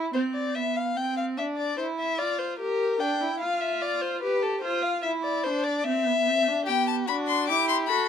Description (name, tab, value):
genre	classical, baroque-style fugue for string quartet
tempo	74 BPM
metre	4/4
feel	straight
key	C major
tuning	A4 = 439 Hz
part	rich viola	accompaniment	0.0-8.1 s	B3 to G4	-28 LUFS	right 3 dB	none
part	dark violin	second line	0.1-8.1 s	F#4 to G5	-27 LUFS	left 4 dB	none
part	rich violin	melody	6.7-8.1 s	G5 to D6	-24 LUFS	left 8 dB	none
room	light reverb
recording	close, detailed microphones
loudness	-24 LUFS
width	side -8 dB against mid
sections	0.1-8.1 A section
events	none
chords	0.1 N.C.; 1.8 C7/E (rootless); 3.4 F5; 5.0 C; 6.7 G/B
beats	| 0.14 0.96 1.78 2.59 | 3.41 4.22 5.04 5.85 | 6.67 7.48